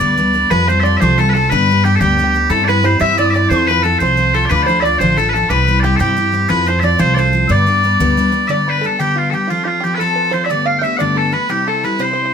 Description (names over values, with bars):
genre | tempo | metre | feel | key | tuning
celtic folk, Celtic jig | 120 BPM (dotted quarters) | 6/8 | straight | G mixolydian | A4 = 438 Hz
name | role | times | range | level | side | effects
loud bright bagpipes | melody | 0.0-12.3 s | F4 to G5 | -15 LUFS | right 1 dB | plate reverb
open-back banjo | second line | 0.0-12.3 s | F4 to F5 | -24 LUFS | right 5 dB | none
reedy wooden whistle | second line | 0.0-12.3 s | F5 to F6 | -23 LUFS | left 5 dB | none
picked steel-string acoustic guitar | accompaniment | 0.0-12.3 s | G2 to B4 | -18 LUFS | left 2 dB | none
upright bass | bass | 0.0-8.4 s | A1 to G2 | -17 LUFS | equal | none
room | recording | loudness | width
moderate studio reverb, RT60 0.6 s | none | -12 LUFS | side -7 dB against mid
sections
0.5-8.5 A section; 8.5-12.3 B section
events
none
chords
0.0 G; 0.5 Fadd9; 1.5 G; 2.5 C/G; 3.5 F; 4.5 Dm; 5.5 C; 6.5 F; 7.5 G; 9.5 F; 10.5 Gadd9; 11.5 C